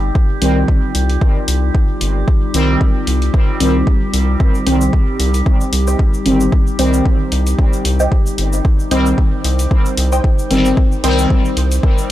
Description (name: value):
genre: dub techno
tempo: 113 BPM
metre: 4/4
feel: swing 55% on 16ths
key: C minor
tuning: A4 = 442 Hz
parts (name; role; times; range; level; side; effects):
- warbly tape-like pad; sustained chords; 0.0-12.1 s; G3 to C5; -24 LUFS; left 2 dB; chorus, built-in reverb, sidechain pumping
- round analog bass; bass; 0.0-11.8 s; G1 to C2; -16 LUFS; equal; tube saturation, sidechain pumping
- drifting glass-harmonics texture; texture; 0.0-12.1 s; G4; -29 LUFS; right 3 dB; chorus, built-in reverb, sidechain pumping
- electronic kick drum; drums; 0.2-12.0 s; none; -14 LUFS; equal; none
- resonant sweep polysynth; stabs; 0.4-11.3 s; Eb3 to C4; -19 LUFS; equal; chorus, phaser, sidechain pumping, dub echo
- electronic hi-hat and shaker; drums; 0.4-12.1 s; none; -24 LUFS; left 2 dB; none
- filtered dub chord stab; riff; 4.7-11.2 s; C5 to G5; -24 LUFS; right 2 dB; phaser, analog chorus, sidechain pumping, dub echo
room: digital ambience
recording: dry, gritty hardware recording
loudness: -12 LUFS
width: side -14 dB against mid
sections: 0.0-12.1 A section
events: none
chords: 0.0 Cm